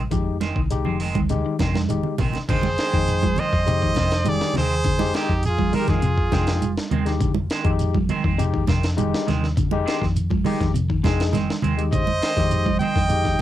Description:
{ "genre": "afrobeat", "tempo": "102 BPM", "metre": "4/4", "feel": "straight", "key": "F dorian", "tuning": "A4 = 440 Hz", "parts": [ { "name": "clean electric guitar", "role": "arpeggios", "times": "0.0-13.4 s", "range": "C3 to F3", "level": "-28 LUFS", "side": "left 6 dB", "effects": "cassette tape" }, { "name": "hollow-body short-scale fingered electric bass", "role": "bass", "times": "0.0-13.4 s", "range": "F1 to F2", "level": "-24 LUFS", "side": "equal", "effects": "none" }, { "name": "barky tine electric piano", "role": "accompaniment", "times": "0.1-13.4 s", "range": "Ab3 to G5", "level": "-28 LUFS", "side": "left 8 dB", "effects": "overdrive, cassette tape" }, { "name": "breakbeat sampler-style drum kit", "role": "drums", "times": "0.1-13.4 s", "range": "crash cymbal, hi-hat, kick drum, snare drum", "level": "-26 LUFS", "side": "equal", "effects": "cassette tape" }, { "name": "congas", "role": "percussion", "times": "0.1-13.4 s", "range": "none", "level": "-27 LUFS", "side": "right 8 dB", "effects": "none" }, { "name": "shekere", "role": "percussion", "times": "0.1-13.3 s", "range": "none", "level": "-28 LUFS", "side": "right 4 dB", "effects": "none" }, { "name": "semi-hollow electric guitar", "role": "stabs", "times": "0.4-13.0 s", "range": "Eb3 to C4", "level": "-30 LUFS", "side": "right 7 dB", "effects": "cassette tape" }, { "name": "brilliant trumpet", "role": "melody", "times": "2.5-6.7, 11.9-13.4 s", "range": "G4 to G5", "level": "-24 LUFS", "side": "equal", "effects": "cassette tape" }, { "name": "breathy trumpet", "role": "second line", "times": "2.5-6.7, 11.9-13.4 s", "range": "Eb4 to Eb5", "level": "-30 LUFS", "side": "right 8 dB", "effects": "cassette tape, tape echo" } ], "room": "little or no reverb", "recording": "home recording on cassette", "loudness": "-19 LUFS", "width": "side -12 dB against mid", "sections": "0.0-2.5 A section; 2.5-13.4 B section", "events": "drum fill 1.7-2.5", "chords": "0.0 Fm7" }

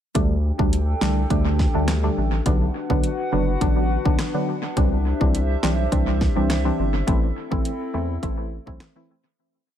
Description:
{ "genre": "dancehall", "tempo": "104 BPM", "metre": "4/4", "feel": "straight", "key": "A dorian", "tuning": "A4 = 443 Hz", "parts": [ { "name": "wavetable chord stab", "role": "accompaniment", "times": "0.1-9.2 s", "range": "D3 to E4", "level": "-25 LUFS", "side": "equal", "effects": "analog delay" }, { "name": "hollow soft pad", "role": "sustained chords", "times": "0.2-9.4 s", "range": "C4 to G5", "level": "-29 LUFS", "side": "left 1 dB", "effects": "chorus, sidechain pumping" }, { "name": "saturated sub bass", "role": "bass", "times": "0.2-8.8 s", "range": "F#1 to E2", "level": "-23 LUFS", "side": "equal", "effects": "none" }, { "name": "pop drum kit", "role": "drums", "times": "0.2-9.0 s", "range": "handclaps, hi-hat, kick drum, rim click, snare drum", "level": "-24 LUFS", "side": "equal", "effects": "analog delay" } ], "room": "little or no reverb", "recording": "echo-heavy mix", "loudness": "-19 LUFS", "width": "side -10 dB against mid", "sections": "0.2-9.4 verse", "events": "fade-out 7.1-9.4", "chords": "0.2 Dsus4; 2.5 Bm; 4.8 Cadd9; 7.1 Am" }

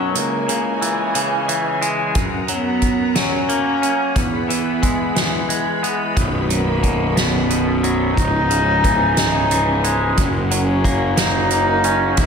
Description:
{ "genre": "post-rock", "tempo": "60 BPM (dotted quarters)", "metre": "6/8", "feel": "straight", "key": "unclear", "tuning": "A4 = 440 Hz", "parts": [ { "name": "warm cello", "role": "melody", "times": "0.0-12.3 s", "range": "A#3 to E4", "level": "-20 LUFS", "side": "right 1 dB", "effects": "digital delay" }, { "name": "rich studio string section", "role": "sustained chords", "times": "0.0-12.3 s", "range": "E3 to B5", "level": "-29 LUFS", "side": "equal", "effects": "none" }, { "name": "twangy electric guitar", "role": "arpeggios", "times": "0.0-12.3 s", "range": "B1 to C#4", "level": "-21 LUFS", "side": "left 2 dB", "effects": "slapback echo, digital delay" }, { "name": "soft-mallet drum kit", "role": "drums", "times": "0.2-12.3 s", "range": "hi-hat, kick drum, snare drum", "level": "-21 LUFS", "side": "right 1 dB", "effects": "none" }, { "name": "fuzz picked electric bass", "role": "bass", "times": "6.2-12.3 s", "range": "B0 to F#1", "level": "-21 LUFS", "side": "equal", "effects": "overdrive" } ], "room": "wet lush hall reverb, RT60 1.8 s", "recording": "big arena sound", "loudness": "-16 LUFS", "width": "side -6 dB against mid", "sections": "0.0-12.3 A section", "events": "none", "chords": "0.1 C#madd9; 2.2 F#; 4.2 Eadd9; 6.2 Badd9; 8.2 C#madd9; 10.2 F#" }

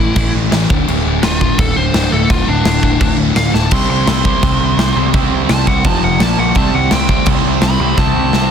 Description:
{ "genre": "punk rock", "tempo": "169 BPM", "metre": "4/4", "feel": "straight", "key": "unclear", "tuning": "A4 = 441 Hz", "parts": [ { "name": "biting lead guitar", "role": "melody", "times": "0.0-8.5 s", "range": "D4 to C6", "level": "-20 LUFS", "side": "left 2 dB", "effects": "overdrive, tape echo" }, { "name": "fuzz guitar", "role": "riff", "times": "0.0-8.5 s", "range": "D2 to C4", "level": "-20 LUFS", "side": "right 1 dB", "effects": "distortion" }, { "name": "sludgy distorted guitar", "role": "riff", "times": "0.0-8.5 s", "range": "D2 to C4", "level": "-19 LUFS", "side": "left 11 dB", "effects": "overdrive" }, { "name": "growling picked electric bass", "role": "bass", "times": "0.0-8.5 s", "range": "D1 to C2", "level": "-18 LUFS", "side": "equal", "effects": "overdrive" }, { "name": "big rock drum kit", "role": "drums", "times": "0.2-8.4 s", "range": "crash cymbal, kick drum, snare drum", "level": "-16 LUFS", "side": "equal", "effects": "none" }, { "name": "biting overdriven guitar", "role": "riff", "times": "3.7-8.5 s", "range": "F2 to C4", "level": "-19 LUFS", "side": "right 18 dB", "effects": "none" } ], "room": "little or no reverb", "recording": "dense, heavily limited modern master", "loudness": "-11 LUFS", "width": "side -7 dB against mid", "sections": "0.0-8.5 A section", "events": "lead electric guitar solo 0.0-8.5; drum fill 3.5, 8.0-8.5", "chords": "0.0 A5; 0.7 D5; 3.7 C5; 5.8 F5; 6.2 Bb5; 6.6 C5" }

